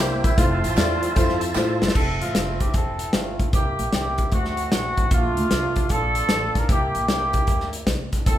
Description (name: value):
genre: uptempo gospel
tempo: 152 BPM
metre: 4/4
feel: swing 66% on 8ths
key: F major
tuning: A4 = 439 Hz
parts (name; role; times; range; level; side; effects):
- mellow horn section; melody; 0.0-8.4 s; A3 to Bb4; -24 LUFS; right 1 dB; none
- bright grand piano; accompaniment; 0.0-1.9 s; A3 to D5; -25 LUFS; left 2 dB; none
- tonewheel organ; sustained chords; 0.0-1.9 s; F4 to A5; -28 LUFS; right 2 dB; slow rotary speaker, chorus vibrato
- upright bass; bass; 0.0-8.4 s; E1 to A2; -28 LUFS; equal; none
- modern studio drum kit; drums; 0.2-8.4 s; crash cymbal, hi-hat, kick drum, snare drum; -22 LUFS; equal; none
- tambourine and handclaps; percussion; 0.3-1.9 s; none; -34 LUFS; right 2 dB; none
room: moderate large studio reverb, RT60 1.2 s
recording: band playing live in one room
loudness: -19 LUFS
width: side -12 dB against mid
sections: 0.0-2.0 A section; 2.0-8.4 B section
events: drum fill 1.6-2.0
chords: 0.4 Fmaj7; 2.0 Fmaj9; 3.5 C7; 4.3 D7; 5.1 Bbmaj9; 6.7 C7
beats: | 0.38 0.77 1.16 1.56 | 1.95 2.35 2.74 3.14 | 3.53 3.92 4.32 4.71 | 5.11 5.50 5.90 6.29 | 6.69 7.08 7.47 7.87 | 8.26